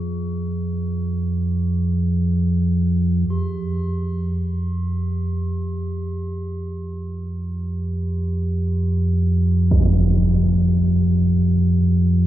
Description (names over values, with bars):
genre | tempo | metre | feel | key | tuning
dark ambient drone | free time | none | none | F minor | A4 = 442 Hz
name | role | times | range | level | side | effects
deep rumbling drone | drone | 0.0-12.3 s | F2 to F3 | -19 LUFS | equal | built-in reverb, phaser
bronze singing bowl | texture | 0.0-12.3 s | G4 to Ab4 | -37 LUFS | left 1 dB | none
impact | percussion | 9.7-9.9 s | none | -22 LUFS | right 1 dB | low-pass filter on sfx
room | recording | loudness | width
wet cathedral reverb, RT60 7.0 s | in a vast, echoing space | -18 LUFS | side -13 dB against mid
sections
0.0-3.3 A section; 3.3-12.3 B section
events
filter sweep on synth drone 0.0-3.3, 3.3-12.3; fade-in on singing bowl 3.3-12.3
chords
0.0 Fm